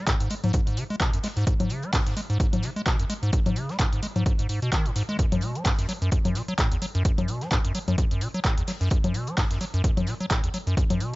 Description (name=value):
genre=acid house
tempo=129 BPM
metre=4/4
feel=swing 56% on 16ths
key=G# phrygian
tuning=A4 = 440 Hz
part: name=acid bass, square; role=riff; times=0.0-11.2 s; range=E2 to G#3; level=-27 LUFS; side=equal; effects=sidechain pumping, analog delay
part: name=damped 70s drum kit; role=drums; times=0.1-11.2 s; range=hi-hat, snare drum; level=-43 LUFS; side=left 2 dB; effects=none
part: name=electronic kick drum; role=drums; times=0.1-10.9 s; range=none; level=-24 LUFS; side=equal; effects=none
part: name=punchy analog drum machine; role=drums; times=0.1-11.1 s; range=congas, handclaps, hi-hat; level=-29 LUFS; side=left 2 dB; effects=none
room=small room ambience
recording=nothing above 7.7 kHz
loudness=-23 LUFS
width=side -21 dB against mid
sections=0.0-11.2 A section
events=none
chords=none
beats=0.07 0.54 1.00 | 1.47 1.93 2.40 2.86 | 3.33 3.79 4.26 4.72 | 5.19 5.66 6.12 6.58 | 7.05 7.51 7.98 8.45 | 8.91 9.38 9.84 10.31 | 10.77